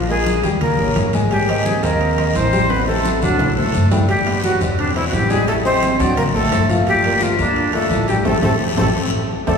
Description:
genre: Afro-Cuban jazz.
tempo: 173 BPM.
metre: 4/4.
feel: straight.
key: G minor.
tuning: A4 = 441 Hz.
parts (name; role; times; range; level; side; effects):
warm upright piano; accompaniment; 0.0-9.6 s; Bb2 to Ab5; -22 LUFS; left 2 dB; none.
upright bass; bass; 0.0-9.6 s; E1 to Eb2; -21 LUFS; equal; none.
breathy bright jazz flute; melody; 0.1-9.6 s; D4 to D5; -20 LUFS; right 1 dB; none.
warm trombone; second line; 0.1-9.6 s; D3 to D4; -24 LUFS; left 2 dB; none.
congas; percussion; 0.1-9.6 s; none; -25 LUFS; left 2 dB; none.
guiro; percussion; 0.3-9.6 s; none; -31 LUFS; left 4 dB; none.
timbales; percussion; 0.3-9.6 s; none; -27 LUFS; right 4 dB; none.
room: wet cathedral reverb, RT60 3.8 s.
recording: recorded in a church or concert hall, studio reverb.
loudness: -14 LUFS.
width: side -6 dB against mid.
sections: 0.0-9.6 A section.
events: drum fill 2.7-4.1, 8.3-9.6; band accent 8.3-9.6.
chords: 0.0 Bb5; 0.6 Eb7; 1.3 Abmaj9; 2.7 Am7; 3.4 D7; 4.1 G6; 4.8 E7alt; 5.5 Am7b5; 6.2 D7; 6.9 Gm9; 8.3 Am7; 9.0 D5.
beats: 0.26 0.61 0.96 | 1.31 1.66 2.00 2.35 | 2.70 3.05 3.40 3.74 | 4.09 4.44 4.79 5.13 | 5.48 5.83 6.17 6.52 | 6.87 7.21 7.56 7.91 | 8.26 8.60 8.95 9.30.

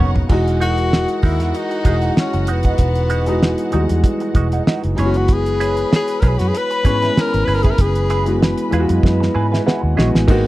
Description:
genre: lush 1970s-style soul.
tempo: 96 BPM.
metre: 4/4.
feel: swing 54% on 16ths.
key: unclear.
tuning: A4 = 441 Hz.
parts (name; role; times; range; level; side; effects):
rich studio string section; second line; 0.0-9.6 s; D#4 to B5; -28 LUFS; equal; none.
warm concert grand piano; accompaniment; 0.0-10.5 s; C#3 to G#5; -21 LUFS; equal; none.
direct-recorded clean electric guitar; riff; 0.0-10.2 s; G#3 to C#5; -26 LUFS; right 6 dB; wah.
vintage muted fingered electric bass; bass; 0.0-10.5 s; E1 to G#2; -18 LUFS; equal; none.
cloth-damped thuddy drum kit; drums; 0.2-10.4 s; crash cymbal, hi-hat, kick drum, snare drum, toms; -16 LUFS; equal; none.
breathy tenor saxophone; melody; 0.6-8.4 s; B3 to B4; -21 LUFS; left 3 dB; none.
vibraphone with soft mallets; texture; 0.6-10.3 s; A#4 to D#5; -33 LUFS; right 3 dB; none.
room: small room ambience.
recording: dry, close 1970s-style studio recording.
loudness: -14 LUFS.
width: side -17 dB against mid.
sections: 0.3-10.3 A section.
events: drum fill 0.0-0.3, 9.0-10.3; grand piano fill 9.0-10.3.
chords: 0.3 Emaj9; 5.0 F#9sus4.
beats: | 0.30 0.92 1.55 2.17 | 2.79 3.42 4.04 4.67 | 5.29 5.91 6.54 7.16 | 7.79 8.41 9.03 9.66 | 10.28.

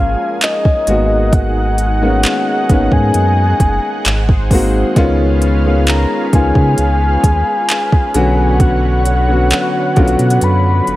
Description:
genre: contemporary R&B.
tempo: 66 BPM.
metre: 4/4.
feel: straight.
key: unclear.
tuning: A4 = 440 Hz.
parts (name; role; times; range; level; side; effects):
soft octave-layered synth lead; melody; 0.0-11.0 s; D#5 to B5; -18 LUFS; left 1 dB; chorus, tape echo.
warm grand piano; accompaniment; 0.0-11.0 s; D3 to G#4; -17 LUFS; left 2 dB; none.
lush unison pad; sustained chords; 0.0-11.0 s; D3 to G#5; -23 LUFS; right 1 dB; chorus.
sub bass with octave; bass; 0.0-11.0 s; F#1 to C#3; -15 LUFS; equal; none.
smooth R&B drum kit; drums; 0.4-11.0 s; handclaps, hi-hat, kick drum; -14 LUFS; equal; overdrive.
room: little or no reverb.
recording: none.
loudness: -11 LUFS.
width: side -16 dB against mid.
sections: 0.0-11.0 A section.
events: kick muted 10.4-11.0.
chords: 0.0 F#maj9; 0.9 G#m7; 4.1 G#7; 5.0 C#7; 8.1 Bmadd9.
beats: 0.42 | 1.33 2.23 3.14 4.05 | 4.96 5.87 6.78 7.69 | 8.60 9.51 10.42.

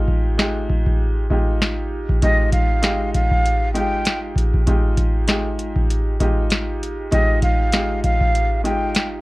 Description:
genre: hip hop, boom-bap hip-hop.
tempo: 98 BPM.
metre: 4/4.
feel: swing 56% on 16ths.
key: F minor.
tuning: A4 = 442 Hz.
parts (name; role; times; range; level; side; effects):
warm upright piano; accompaniment; 0.0-9.2 s; Ab3 to G4; -24 LUFS; equal; cassette tape, high-pass filter, low-pass filter, plate reverb.
booming analog drum machine; drums; 0.1-9.1 s; hi-hat, kick drum, snare drum; -18 LUFS; equal; none.
breathy mellow silver concert flute; melody; 2.2-9.1 s; Eb5 to G5; -22 LUFS; equal; high-pass filter, low-pass filter, plate reverb.
room: little or no reverb.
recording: worn, warbling old tape, cassette tape, warbly pitch drift.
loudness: -17 LUFS.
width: side -20 dB against mid.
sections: 0.0-9.2 A section.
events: break 0.0-2.2.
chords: 0.0 Fm9.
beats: 0.39 1.00 1.61 | 2.23 2.84 3.45 4.06 | 4.67 5.29 5.90 6.51 | 7.12 7.74 8.35 8.96.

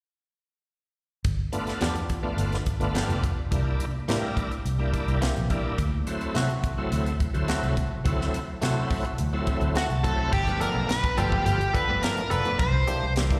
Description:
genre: straight-eighth soul blues.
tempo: 106 BPM.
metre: 4/4.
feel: straight.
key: G mixolydian from 10.3 s.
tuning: A4 = 440 Hz.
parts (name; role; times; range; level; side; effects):
vintage muted fingered electric bass; bass; 1.2-13.4 s; F1 to C3; -30 LUFS; equal; none.
tight funk drum kit; drums; 1.2-13.4 s; crash cymbal, hi-hat, kick drum, snare drum; -32 LUFS; equal; none.
bright tonewheel organ; accompaniment; 1.5-13.4 s; E3 to A5; -33 LUFS; equal; slow rotary speaker, overdrive, chorus vibrato, slapback echo.
direct-recorded clean electric guitar; stabs; 1.8-13.1 s; E3 to A4; -36 LUFS; equal; spring reverb, slapback echo, digital delay.
smooth overdriven lead guitar; melody; 9.8-13.1 s; F#4 to C5; -29 LUFS; equal; slapback echo.
room: light reverb.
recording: live gig heard through the venue's PA, recital hall reverb.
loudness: -26 LUFS.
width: mono.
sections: 1.2-10.3 A section; 10.3-13.4 B section.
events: tonewheel organ fill 9.5-10.3.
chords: 1.2 G7; 3.5 C7; 5.8 D7; 10.3 G9; 12.6 C9.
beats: | 1.24 1.81 2.38 2.95 | 3.52 4.08 4.65 5.22 | 5.79 6.35 6.92 7.49 | 8.06 8.62 9.19 9.76 | 10.33 10.89 11.46 12.03 | 12.59 13.16.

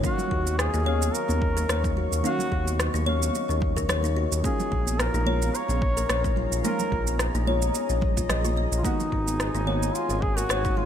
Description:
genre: organic downtempo.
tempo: 109 BPM.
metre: 4/4.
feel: swing 55% on 16ths.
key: Eb minor.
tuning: A4 = 440 Hz.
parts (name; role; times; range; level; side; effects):
mellow duduk; melody; 0.0-10.9 s; Eb4 to Db5; -31 LUFS; equal; digital delay.
deep mellow chord stab; accompaniment; 0.0-10.9 s; Eb3 to F5; -33 LUFS; right 3 dB; wide subtle chorus, sidechain pumping, ping-pong delay.
warbly tape-like pad; sustained chords; 0.0-10.9 s; Gb3 to Db6; -36 LUFS; equal; chorus, built-in reverb, vintage 12-bit sampler grit, sidechain pumping.
kalimba; arpeggios; 0.0-10.9 s; Db4 to Eb5; -30 LUFS; left 5 dB; ping-pong delay.
electronic kick drum; drums; 0.0-10.7 s; none; -29 LUFS; equal; overdrive.
electronic shaker and rim click; drums; 0.0-10.8 s; none; -31 LUFS; right 1 dB; overdrive.
congas; percussion; 0.2-10.9 s; none; -36 LUFS; right 4 dB; none.
smooth synth bass; bass; 0.3-10.9 s; Ab1 to Eb2; -26 LUFS; equal; sidechain pumping.
room: light reverb, digital ambience.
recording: none.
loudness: -22 LUFS.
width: side -9 dB against mid.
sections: 0.0-10.9 A section.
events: none.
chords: 0.0 Ebm9; 4.4 Bbm7; 8.8 Abm7.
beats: | 0.04 0.59 1.14 1.69 | 2.24 2.79 3.34 3.89 | 4.44 5.00 5.54 6.09 | 6.65 7.20 7.75 8.30 | 8.85 9.40 9.95 10.50.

